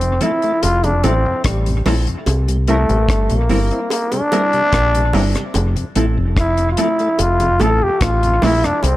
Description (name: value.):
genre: roots reggae.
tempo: 73 BPM.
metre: 4/4.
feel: straight.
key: F major.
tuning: A4 = 439 Hz.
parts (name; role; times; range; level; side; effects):
growling trombone; melody; 0.0-9.0 s; G3 to A4; -17 LUFS; equal; dub echo.
mellow tonewheel organ; accompaniment; 0.0-8.7 s; F2 to E4; -26 LUFS; left 2 dB; slow rotary speaker, dub echo.
deep dub fingered electric bass; bass; 0.0-9.0 s; F1 to C2; -17 LUFS; equal; none.
deep reggae drum kit; drums; 0.0-9.0 s; hi-hat, kick drum, rim click; -23 LUFS; left 1 dB; dub echo.
mellow electric guitar; accompaniment; 0.2-8.6 s; F3 to Bb4; -23 LUFS; right 2 dB; tremolo, dub echo.
bongos; percussion; 0.6-9.0 s; none; -26 LUFS; right 2 dB; none.
room: light reverb.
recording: none.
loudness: -14 LUFS.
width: side -15 dB against mid.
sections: 0.0-9.0 A section.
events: trombone solo 0.0-9.0.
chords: 0.0 Fmaj7; 2.3 C7; 5.5 Fmaj7.